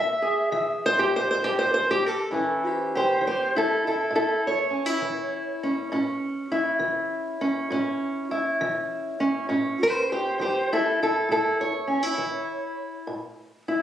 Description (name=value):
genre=acoustic country blues, solo or duo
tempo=67 BPM (dotted quarters)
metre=12/8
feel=straight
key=A major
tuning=A4 = 439 Hz
part: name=fingerpicked steel-string acoustic guitar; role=solo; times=0.0-13.8 s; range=A2 to E5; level=-23 LUFS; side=equal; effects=none
room=moderate small room reverb, RT60 0.5 s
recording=recorded on a phone in the room, studio reverb, compression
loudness=-23 LUFS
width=side -10 dB against mid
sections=0.0-2.3 A section; 2.3-13.8 B section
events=steel-string acoustic guitar solo 0.0-2.3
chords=0.0 E; 2.3 A